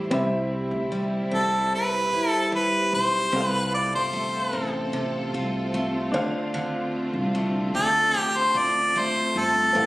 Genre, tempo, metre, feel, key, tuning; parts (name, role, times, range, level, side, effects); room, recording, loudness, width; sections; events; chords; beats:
acoustic pop; 75 BPM; 4/4; straight; A4 = 440 Hz
bright upright piano; accompaniment; 0.0-9.9 s; C4 to B5; -32 LUFS; left 1 dB
picked steel-string acoustic guitar; accompaniment; 0.0-9.9 s; A2 to F4; -29 LUFS; equal
warm studio string section; sustained chords; 0.0-9.9 s; D3 to A4; -33 LUFS; equal
upright bass; bass; 0.0-9.9 s; G1 to D2; -32 LUFS; equal
bright harmonica; melody; 1.3-9.9 s; A4 to D5; -21 LUFS; equal
light reverb; recorded on a phone in the room, studio reverb, compression; -22 LUFS; side -19 dB against mid
0.0-9.9 A section
0.1 Cmaj7; 3.3 F; 6.1 Dm7
| 0.12 0.92 1.73 2.53 | 3.33 4.13 4.94 5.74 | 6.54 7.35 8.15 8.95 | 9.76